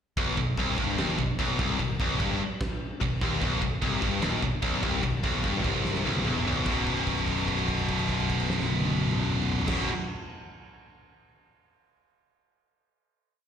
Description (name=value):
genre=heavy metal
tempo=148 BPM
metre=4/4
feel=straight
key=unclear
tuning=A4 = 440 Hz
part: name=heavy high-gain guitar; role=riff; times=0.2-9.9 s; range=B1 to B2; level=-29 LUFS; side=left 7 dB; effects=distortion, slapback echo
part: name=heavy high-gain guitar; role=riff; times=0.2-9.9 s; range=B1 to B2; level=-30 LUFS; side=right 13 dB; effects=distortion, slapback echo
part: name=modern bright picked electric bass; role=bass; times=0.2-9.9 s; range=B0 to G1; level=-33 LUFS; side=right 1 dB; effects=none
part: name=big rock drum kit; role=drums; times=0.2-9.8 s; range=crash cymbal, kick drum, snare drum, toms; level=-32 LUFS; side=right 1 dB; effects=none
room=small room ambience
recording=live gig heard through the venue's PA, recital hall reverb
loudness=-25 LUFS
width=side -8 dB against mid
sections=0.2-6.7 riff; 6.7-9.9 final chord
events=drum fill 5.8-6.7; held note 6.7-9.7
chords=0.2 B; 6.7 B5